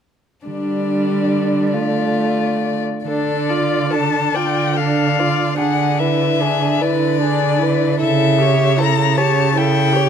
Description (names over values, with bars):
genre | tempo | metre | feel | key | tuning
classical, slow romantic movement for string quartet | 43-52 BPM (dotted quarters) | 6/8 | rubato | D minor | A4 = 440 Hz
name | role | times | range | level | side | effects
rich violin | melody | 0.5-10.1 s | D5 to Bb5 | -20 LUFS | left 10 dB | none
rich violin | second line | 0.5-10.1 s | D4 to D5 | -22 LUFS | left 4 dB | none
rich viola | accompaniment | 0.5-10.1 s | G3 to G4 | -21 LUFS | right 3 dB | none
rich cello | bass | 0.5-10.1 s | C#3 to D3 | -19 LUFS | right 5 dB | none
room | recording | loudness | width
moderate recital hall reverb, RT60 1.5 s | none | -15 LUFS | side -8 dB against mid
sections
0.5-3.1 A section; 3.1-10.1 B section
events
none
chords
0.5 Dm; 5.6 E7/D; 8.0 A7/C#